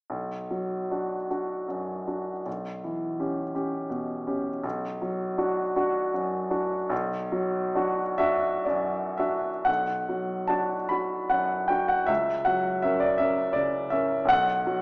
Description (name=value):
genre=classical, romantic nocturne for solo piano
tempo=37-56 BPM (dotted quarters)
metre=6/8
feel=rubato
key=B minor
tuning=A4 = 441 Hz
part: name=clear baby grand piano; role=solo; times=0.1-14.8 s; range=B1 to B5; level=-24 LUFS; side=equal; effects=none
room=moderate recital hall reverb, RT60 1.6 s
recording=small speaker sound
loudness=-24 LUFS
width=side -35 dB against mid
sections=0.1-9.7 A section; 9.7-14.8 B section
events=none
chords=0.1 Bm; 2.5 C#m7b5/B; 4.6 Bm; 12.1 F#/C#; 14.3 B5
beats=| 0.08 1.30 | 2.46 3.56 | 4.64 5.77 | 6.91 8.20 | 9.68 10.91 | 12.09 13.19 | 14.30